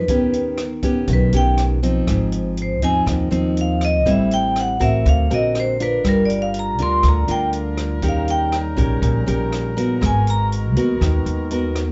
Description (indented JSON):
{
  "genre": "bossa nova",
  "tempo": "121 BPM",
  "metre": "4/4",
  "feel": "straight",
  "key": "Eb major",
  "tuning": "A4 = 441 Hz",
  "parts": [
    { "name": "vibraphone with medium hard mallets", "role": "melody", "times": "0.0-10.4 s", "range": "Bb4 to C6", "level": "-23 LUFS", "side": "equal", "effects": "none" },
    { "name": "nylon-string guitar", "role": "accompaniment", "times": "0.0-11.9 s", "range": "Ab2 to Bb4", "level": "-24 LUFS", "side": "equal", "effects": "none" },
    { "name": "upright bass", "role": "bass", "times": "0.0-11.9 s", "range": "G1 to Eb2", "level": "-23 LUFS", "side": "equal", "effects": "none" },
    { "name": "open jazz drum kit", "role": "drums", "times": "0.1-11.9 s", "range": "hi-hat, kick drum, rim click", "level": "-28 LUFS", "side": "equal", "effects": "none" },
    { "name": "warm woodwind section", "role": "sustained chords", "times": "6.0-11.9 s", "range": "Cb3 to Bb4", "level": "-33 LUFS", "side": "equal", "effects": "none" }
  ],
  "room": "light reverb",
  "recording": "nothing above 7.8 kHz",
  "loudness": "-19 LUFS",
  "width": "mono",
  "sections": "0.0-11.9 A section",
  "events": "vibraphone solo 0.0-11.9",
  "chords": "0.1 Ebaug7; 2.1 Ab6; 4.1 Am7; 5.1 D7alt; 6.0 Gm7; 8.0 Eb7; 10.0 Abm9",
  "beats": "| 0.09 0.59 1.08 1.58 | 2.08 2.57 3.07 3.56 | 4.06 4.56 5.05 5.55 | 6.04 6.54 7.04 7.53 | 8.03 8.53 9.02 9.52 | 10.02 10.51 11.01 11.51"
}